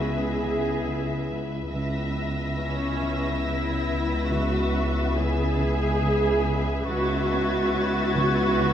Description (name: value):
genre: cinematic, suspense film score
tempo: 70 BPM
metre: 3/4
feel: straight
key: C# minor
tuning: A4 = 440 Hz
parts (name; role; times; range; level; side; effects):
- muted chamber violin section; melody; 0.0-8.7 s; E5; -37 LUFS; left 2 dB; none
- muted studio violin section; second line; 0.0-8.7 s; B4 to E5; -34 LUFS; left 2 dB; none
- muted symphonic viola section; accompaniment; 0.0-8.7 s; C#4 to G#4; -27 LUFS; right 1 dB; none
- dark French horn section; sustained chords; 0.0-8.7 s; B3 to E4; -32 LUFS; left 6 dB; none
- muted chamber cello section; riff; 0.0-8.7 s; C#3 to C#4; -35 LUFS; right 2 dB; none
- muted chamber cello section; bass; 0.0-8.7 s; C#2; -30 LUFS; right 1 dB; none
- muted chamber double bass section; bass; 0.0-8.7 s; C#2; -30 LUFS; right 2 dB; none
- deep rumbling drone; drone; 0.0-8.7 s; C#2; -34 LUFS; left 1 dB; built-in reverb
- muted studio violin section; texture; 0.0-8.7 s; E6 to A#6; -37 LUFS; left 2 dB; none
room: moderate scoring stage reverb, RT60 1.6 s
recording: none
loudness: -23 LUFS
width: side -9 dB against mid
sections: 0.0-8.7 A section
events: none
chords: 0.0 C#m7